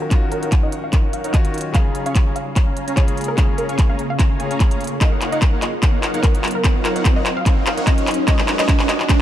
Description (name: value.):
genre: future bass.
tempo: 147 BPM.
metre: 4/4.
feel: swing 54% on 16ths, half-time.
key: Eb minor.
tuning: A4 = 440 Hz.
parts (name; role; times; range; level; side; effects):
wide unison pluck; melody; 0.0-9.1 s; Bb4 to Bb5; -27 LUFS; equal; sidechain pumping, tape echo.
bright concert grand piano; accompaniment; 0.0-5.0 s; Db3 to Ab4; -28 LUFS; left 2 dB; sidechain pumping, ping-pong delay.
shimmering ambient pad; sustained chords; 0.0-9.2 s; Db3 to F5; -30 LUFS; left 1 dB; chorus, built-in reverb, phaser, sidechain pumping.
riser; sound effects; 1.0-9.2 s; none; -28 LUFS; right 4 dB; none.
supersaw chords; riff; 0.1-9.2 s; Ab3 to Db6; -27 LUFS; equal; sidechain pumping, low-pass filter.
electronic kick drum; drums; 0.1-9.2 s; none; -16 LUFS; equal; studio reverb.
trap drum kit; drums; 0.1-9.2 s; handclaps, hi-hat; -24 LUFS; left 1 dB; high-pass filter on snare, studio reverb, high-pass filter on hats.
concert harp; arpeggios; 5.0-9.2 s; Db4 to Gb4; -30 LUFS; left 3 dB; sidechain pumping, ping-pong delay.
room: digital ambience.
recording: dark, warm production.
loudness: -15 LUFS.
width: side -12 dB against mid.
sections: 0.0-9.2 A section.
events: build-up 0.0-9.2; drum fill 0.0-9.2; filter sweep on supersaw synth 0.0-9.2; filter sweep on synth pluck 0.0-9.2; riser 1.0-9.2.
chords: 0.0 Ebm9; 1.7 Bbm7/Db; 5.0 Ebm9; 8.3 Abm11.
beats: | 0.11 0.52 0.93 1.34 | 1.75 2.15 2.56 2.97 | 3.38 3.79 4.20 4.60 | 5.01 5.42 5.83 6.24 | 6.64 7.05 7.46 7.87 | 8.28 8.69 9.09.